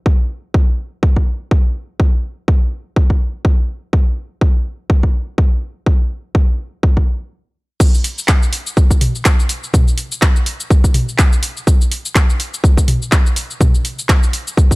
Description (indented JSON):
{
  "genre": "house",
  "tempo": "124 BPM",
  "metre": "4/4",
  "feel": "swing 56% on 16ths",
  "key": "none",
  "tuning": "none",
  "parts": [
    { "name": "electronic kick drum", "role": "drums", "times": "0.1-14.8 s", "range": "none", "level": "-12 LUFS", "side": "equal", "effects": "overdrive" },
    { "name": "house drum kit", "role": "drums", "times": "7.8-14.8 s", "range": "crash cymbal, finger snaps, handclaps, hi-hat, shaker, toms", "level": "-19 LUFS", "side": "equal", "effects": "overdrive" }
  ],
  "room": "little or no reverb",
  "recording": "dry, gritty hardware recording",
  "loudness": "-13 LUFS",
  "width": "side -23 dB against mid",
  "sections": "0.0-7.8 A section; 7.8-14.8 B section",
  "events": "stop 7.3-7.8; drop 7.8-14.8",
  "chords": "none",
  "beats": "| 0.06 0.54 1.03 1.51 | 1.99 2.48 2.96 3.45 | 3.93 4.41 4.90 5.38 | 5.87 6.35 6.83 7.32 | 7.80 8.29 8.77 9.25 | 9.74 10.22 10.70 11.19 | 11.67 12.16 12.64 13.12 | 13.61 14.09 14.57"
}